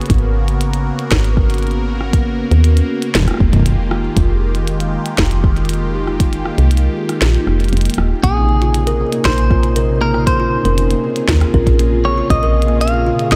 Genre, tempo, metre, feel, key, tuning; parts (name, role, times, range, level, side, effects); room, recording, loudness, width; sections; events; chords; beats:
IDM; 118 BPM; 4/4; straight; Bb minor; A4 = 440 Hz
phased analog pad; sustained chords; 0.0-13.4 s; Bb2 to Bb4; -23 LUFS; equal; phaser, chorus, shimmer reverb
woody FM bass; bass; 0.0-13.4 s; Eb1 to Eb2; -18 LUFS; equal
glitchy drum kit; drums; 0.0-13.4 s; hi-hat, rim click, snare drum; -24 LUFS; equal; delay
electronic kick drum; drums; 0.1-13.4 s; -18 LUFS; equal
clean electric guitar; melody; 8.2-13.4 s; Ab4 to F5; -22 LUFS; equal; vibrato effect, delay, shimmer reverb
kalimba; arpeggios; 8.2-13.4 s; Bb3 to Bb4; -22 LUFS; equal; delay, shimmer reverb
light reverb; dark, warm production; -15 LUFS; mono
0.0-13.4 A section
kick drops out 7.2-8.2
0.0 Abm11; 3.1 Fm11; 8.2 Bbm11
| 0.10 0.61 1.12 1.62 | 2.13 2.64 3.15 3.66 | 4.17 4.67 5.18 5.69 | 6.20 6.71 7.22 7.73 | 8.23 8.74 9.25 9.76 | 10.27 10.78 11.29 11.79 | 12.30 12.81 13.32